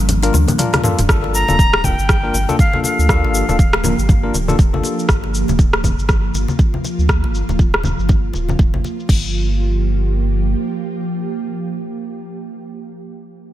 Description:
afro house; 120 BPM; 4/4; swing 58% on 16ths; G minor; A4 = 439 Hz
kalimba; arpeggios; 0.0-1.0 s; F3 to D4; -26 LUFS; left 2 dB; sidechain pumping, ping-pong delay
warm sub bass; bass; 0.0-10.5 s; D1 to D2; -19 LUFS; equal; tube saturation, sidechain pumping
deep house drum kit; drums; 0.1-9.2 s; cabasa, crash cymbal, hi-hat, rim click, toms; -21 LUFS; equal; low-pass filter on hats, low-pass filter on perc, low-pass filter on snare, low-pass filter on toms, low-pass filter on cymbals
congas; percussion; 0.1-9.0 s; -22 LUFS; left 2 dB
barky tine electric piano; stabs; 0.2-5.1 s; Bb3 to Bb4; -22 LUFS; left 4 dB; vintage 12-bit sampler grit, sidechain pumping, ping-pong delay
ethereal airy pad; sustained chords; 2.2-12.3 s; F3 to G4; -25 LUFS; right 2 dB; ensemble chorus, built-in reverb, sidechain pumping
electronic kick drum; drums; 1.1-9.2 s; -14 LUFS; equal
breathy bright concert flute; melody; 1.3-4.3 s; F5 to Bb5; -20 LUFS; left 1 dB; ping-pong delay
little or no reverb; -14 LUFS; side -13 dB against mid
0.0-1.1 A section; 1.1-9.1 B section; 9.1-13.1 C section
break 0.0-1.1; filter sweep on kalimba 0.0-1.1; drum fill 0.3-1.1; filter sweep on drum 1.1-9.1; filter sweep on sub bass 1.1-9.1
0.0 Gm7

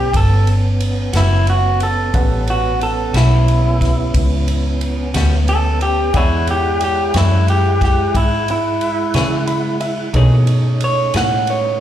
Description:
slow blues; 60 BPM (dotted quarters); 12/8; straight; E mixolydian; A4 = 441 Hz
electric guitar through a small old amp; melody; 0.0-11.8 s; E4 to F#5; -18 LUFS; right 1 dB; slapback echo
warm upright piano; accompaniment; 0.0-11.8 s; G3 to B5; -29 LUFS; right 2 dB; slapback echo
tonewheel organ; sustained chords; 0.0-11.8 s; E3 to F#5; -26 LUFS; equal; chorus vibrato, slow rotary speaker
vintage muted fingered electric bass; bass; 0.0-11.8 s; F#1 to C#3; -16 LUFS; equal
swinging big-band drum kit; drums; 0.1-11.6 s; kick drum, ride cymbal, snare drum; -22 LUFS; equal
semi-hollow electric guitar; accompaniment; 1.1-11.4 s; A2 to C#5; -26 LUFS; left 5 dB; tremolo, slapback echo
studio ambience; live gig heard through the venue's PA, club reverb; -13 LUFS; side -11 dB against mid
0.0-11.8 A section
clean electric guitar solo 0.0-11.8; upright piano fill 9.1-10.1
0.0 A13; 6.1 E13; 10.1 B13

